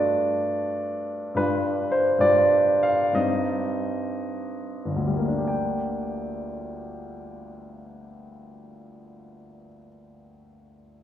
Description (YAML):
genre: classical, romantic character piece for solo piano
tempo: 44-75 BPM (dotted quarters)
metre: 6/8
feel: rubato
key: G minor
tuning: A4 = 440 Hz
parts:
  - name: warm baby grand piano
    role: solo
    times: 0.0-11.0 s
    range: G1 to G5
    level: -23 LUFS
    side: equal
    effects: none
room: wet concert hall reverb, RT60 1.9 s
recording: heard from further back in the room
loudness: -22 LUFS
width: side -11 dB against mid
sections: 0.0-5.5 A section; 5.5-9.9 B section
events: slowing down 0.6-5.5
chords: 0.0 D/G; 1.4 G7; 3.2 Cm/G; 5.5 Gm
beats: 0.56 | 1.38 2.23 | 3.17 4.24 | 5.49 6.57 | 7.67 8.80